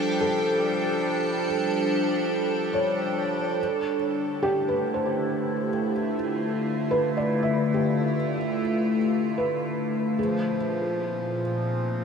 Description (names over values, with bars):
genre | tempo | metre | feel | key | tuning
ambient | 73 BPM | 4/4 | straight | unclear | A4 = 440 Hz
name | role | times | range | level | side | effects
evolving wavetable pad | sustained chords | 0.0-12.0 s | Bb2 to A4 | -25 LUFS | equal | phaser, built-in reverb, shimmer reverb
hand-pumped harmonium | drone | 0.0-3.7, 10.2-12.0 s | F3 | -31 LUFS | equal | none
warm chamber violin section | texture | 0.0-3.6 s | G4 to G5 | -36 LUFS | right 1 dB | shimmer reverb
felt-muted upright piano | arpeggios | 0.2-12.0 s | G4 to E5 | -29 LUFS | equal | ping-pong delay, shimmer reverb
room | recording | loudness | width
wet huge ambient reverb, RT60 8.8 s | none | -23 LUFS | side -6 dB against mid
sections
0.0-3.6 A section; 3.6-12.0 B section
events
none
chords
0.0 G5; 3.6 Dm7; 10.2 Bb7sus4